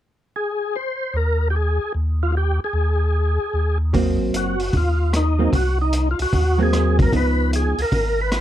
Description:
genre	soul jazz organ trio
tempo	151 BPM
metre	4/4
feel	swing 66% on 8ths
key	Ab mixolydian from 3.9 s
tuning	A4 = 440 Hz
part	percussive tonewheel organ	melody	0.4-8.4 s	Eb4 to C5	-23 LUFS	equal	slow rotary speaker, overdrive, chorus vibrato
part	tonewheel organ	bass	1.1-8.4 s	Gb1 to Eb2	-20 LUFS	equal	chorus vibrato, slow rotary speaker
part	vintage hollow-body jazz guitar	accompaniment	3.9-7.7 s	F3 to Eb4	-21 LUFS	right 2 dB	none
part	vintage drum kit	drums	3.9-8.4 s	hi-hat, kick drum, rim click	-23 LUFS	equal	none
room	little or no reverb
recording	dark, warm production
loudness	-18 LUFS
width	side -12 dB against mid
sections	0.8-3.9 A section; 3.9-8.4 B section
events	none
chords	0.0 N.C.; 0.8 Ebsus4; 3.9 Ab9; 7.1 Db9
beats	0.35 | 0.75 1.15 1.55 1.95 | 2.35 2.74 3.14 3.54 | 3.94 4.34 4.74 5.13 | 5.53 5.93 6.33 6.72 | 7.12 7.52 7.92 8.31

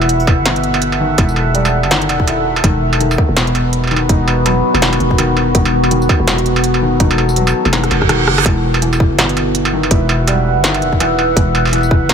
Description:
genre	half-time drum and bass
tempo	165 BPM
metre	4/4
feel	swing 58% on 16ths, half-time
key	E harmonic minor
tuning	A4 = 440 Hz
part	deep dark ambient pad	sustained chords	0.0-12.1 s	B3 to F#5	-17 LUFS	equal	chorus, built-in reverb, sidechain pumping
part	felt-muted upright piano	arpeggios	0.0-12.1 s	B2 to E4	-20 LUFS	left 2 dB	ping-pong delay
part	growling 808-style bass	bass	0.0-12.1 s	E1 to G1	-17 LUFS	equal	none
part	industrial drum kit	drums	0.0-12.1 s	hi-hat, rim click, snare drum, struck metal, tambourine	-18 LUFS	right 2 dB	none
part	electronic kick drum	drums	0.3-12.0 s	none	-13 LUFS	equal	none
part	reverse cymbal	sound effects	7.9-8.5 s	none	-20 LUFS	right 7 dB	none
room	light reverb, digital ambience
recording	none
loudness	-11 LUFS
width	side -7 dB against mid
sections	0.0-12.1 A section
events	drum fill 7.7-8.5; reverse cymbal 7.9-8.5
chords	0.0 Em; 2.6 B/E; 8.5 Em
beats	0.09 0.46 0.82 | 1.18 1.55 1.91 2.27 | 2.64 3.00 3.37 3.73 | 4.09 4.46 4.82 5.18 | 5.55 5.91 6.27 6.64 | 7.00 7.37 7.73 8.09 | 8.46 8.82 9.18 9.55 | 9.91 10.27 10.64 11.00 | 11.37 11.73 12.09

